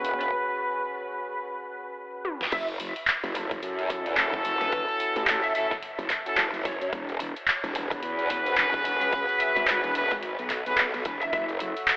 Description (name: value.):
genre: glitch hop.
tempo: 109 BPM.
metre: 4/4.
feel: swing 58% on 16ths.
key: F# minor.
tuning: A4 = 440 Hz.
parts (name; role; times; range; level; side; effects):
dark analog pad; sustained chords; 0.0-0.3, 11.3-12.0 s; G#4 to E6; -40 LUFS; equal; none.
mellow horn section; stabs; 0.0-10.8 s; C#4 to B4; -28 LUFS; equal; sidechain pumping, tape echo.
growl bass; bass; 0.0-11.7 s; E1 to F#2; -32 LUFS; equal; chorus, tube saturation.
dubstep drum kit; drums; 0.0-12.0 s; crash cymbal, handclaps, hi-hat, snare drum, toms; -28 LUFS; equal; none.
lead guitar through a small cranked amp; melody; 0.2-11.4 s; B4 to E5; -33 LUFS; equal; overdrive, analog chorus, tape echo.
electronic kick drum; drums; 2.5-11.5 s; none; -34 LUFS; equal; none.
room: wet huge ambient reverb, RT60 7.3 s.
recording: dreamy mix soaked in reverb, telephone sound.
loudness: -24 LUFS.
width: side -22 dB against mid.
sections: 0.0-2.5 A section; 2.5-12.0 B section.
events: break 0.3-2.5; drum fill 2.2; drop 2.5-12.0.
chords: 0.0 E69; 2.5 F#m7; 6.9 E69; 11.3 F#m7.